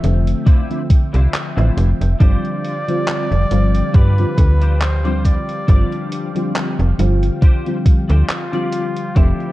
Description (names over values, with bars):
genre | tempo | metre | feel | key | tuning
vaporwave | 69 BPM | 4/4 | swing 55% on 16ths | unclear | A4 = 440 Hz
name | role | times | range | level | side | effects
FM electric piano with soft pad layer | accompaniment | 0.0-9.5 s | D3 to E5 | -21 LUFS | left 1 dB | phaser, ensemble chorus
lush unison pad | sustained chords | 0.0-9.5 s | F3 to A5 | -34 LUFS | equal | chorus
slap-like FM bass | bass | 0.0-9.3 s | F1 to G2 | -15 LUFS | equal | none
gated 80s digital drum machine | drums | 0.0-9.5 s | handclaps, hi-hat | -27 LUFS | equal | gated reverb
clean electric guitar | riff | 0.5-9.5 s | D4 to D5 | -31 LUFS | left 2 dB | ensemble chorus, vintage 12-bit sampler grit, analog delay
electronic kick drum | drums | 0.5-9.4 s | none | -12 LUFS | equal | none
clear flugelhorn | melody | 2.2-9.5 s | F4 to D5 | -26 LUFS | equal | tape echo
room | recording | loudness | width
little or no reverb | dark, warm production, cassette tape | -14 LUFS | side -17 dB against mid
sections
0.0-9.5 A section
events
none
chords
0.0 Dm9/F; 2.2 G7sus4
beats
0.47 1.34 | 2.21 3.08 3.94 4.82 | 5.68 6.55 7.42 8.29 | 9.16